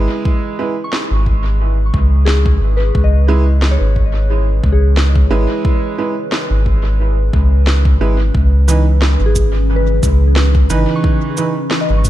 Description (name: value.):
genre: ambient dub.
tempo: 89 BPM.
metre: 4/4.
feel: swing 54% on 16ths.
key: C# minor.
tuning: A4 = 437 Hz.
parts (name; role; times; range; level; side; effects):
warbly tape-like pad; sustained chords; 0.2-12.1 s; C#3 to B4; -25 LUFS; equal; chorus, built-in reverb.
clear upright piano; stabs; 0.0-11.5 s; E3 to B4; -22 LUFS; right 4 dB; dub echo.
soft dub sub bass; bass; 0.0-12.1 s; G#1 to C#2; -12 LUFS; equal; none.
electronic kick drum; drums; 0.3-12.1 s; none; -16 LUFS; equal; none.
soft synth bell; arpeggios; 0.8-12.1 s; G#4 to C#6; -24 LUFS; left 4 dB; chorus, dub echo.
electronic snare drum and cabasa; drums; 0.9-12.1 s; none; -22 LUFS; equal; dub echo.
room: digital ambience.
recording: none.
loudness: -11 LUFS.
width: side -14 dB against mid.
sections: 0.0-12.1 A section.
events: fade-in on ambient pad 0.0-12.1.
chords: 0.0 C#m9.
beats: | 0.25 0.93 1.60 2.28 | 2.95 3.62 4.30 4.97 | 5.65 6.32 7.00 7.67 | 8.34 9.02 9.69 10.37 | 11.04 11.71.